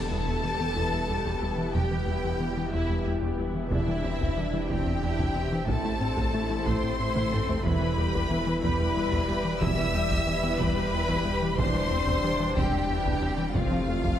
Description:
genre	cinematic, hybrid orchestral and electronic film score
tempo	61 BPM (dotted quarters)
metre	6/8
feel	straight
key	E phrygian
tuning	A4 = 440 Hz
part	warm symphonic violin section	melody	0.0-14.2 s	E5 to E6	-33 LUFS	left 2 dB	none
part	rich symphonic violin section	second line	0.0-14.2 s	E4 to E5	-34 LUFS	left 1 dB	none
part	rich symphonic viola section	accompaniment	0.0-14.2 s	E3 to A4	-35 LUFS	right 2 dB	none
part	clear French horn section	sustained chords	0.0-14.2 s	G3 to G4	-36 LUFS	left 2 dB	none
part	deep dark ambient pad	sustained chords	0.0-14.2 s	E3 to D5	-36 LUFS	left 1 dB	chorus, built-in reverb
part	thumb-piano-like synth pluck	arpeggios	0.0-14.1 s	C3 to E4	-36 LUFS	left 1 dB	chorus
part	rubbery square bass	riff	0.0-14.1 s	E2 to A3	-32 LUFS	left 2 dB	none
part	rich studio cello section	bass	0.0-14.2 s	E2 to A2	-38 LUFS	right 3 dB	none
part	rich studio double bass section	bass	0.0-14.2 s	E1 to A1	-35 LUFS	right 3 dB	none
part	wide detuned saw bass	bass	0.0-14.2 s	E1 to A1	-35 LUFS	equal	chorus
part	impact and reverse cymbal	sound effects	0.0-1.8, 13.5-14.2 s	none	-40 LUFS	equal	none
part	taiko ensemble	drums	1.3-14.2 s	none	-34 LUFS	equal	none
room	moderate concert hall reverb, RT60 1.8 s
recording	none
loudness	-24 LUFS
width	side -10 dB against mid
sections	0.0-14.2 A section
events	impact 0.0-1.8; drum fill 7.2-7.7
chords	0.0 Em; 3.7 Cadd9/E; 5.7 Am; 7.7 Em; 11.6 Cadd9/E; 13.6 F

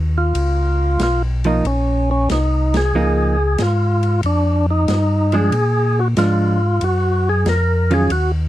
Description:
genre	soul jazz organ trio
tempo	93 BPM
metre	4/4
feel	swing 69% on 8ths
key	Bb minor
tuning	A4 = 439 Hz
part	mellow tonewheel organ	bass	0.0-8.5 s	Bb1 to Bb2	-17 LUFS	equal	slow rotary speaker
part	percussive tonewheel organ	melody	0.2-8.3 s	Db4 to Bb4	-19 LUFS	equal	slow rotary speaker
part	open jazz drum kit	drums	0.3-8.3 s	hi-hat, ride cymbal, snare drum	-29 LUFS	left 1 dB	none
part	vintage hollow-body jazz guitar	accompaniment	1.4-8.1 s	Eb3 to F4	-19 LUFS	right 3 dB	none
room	little or no reverb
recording	dry, close 1970s-style studio recording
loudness	-15 LUFS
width	side -14 dB against mid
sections	0.0-8.5 A section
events	band accent 2.6-2.9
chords	0.4 Db7; 1.6 Bbm11; 4.2 Fm9; 5.5 Bb7; 6.8 Ebmadd9

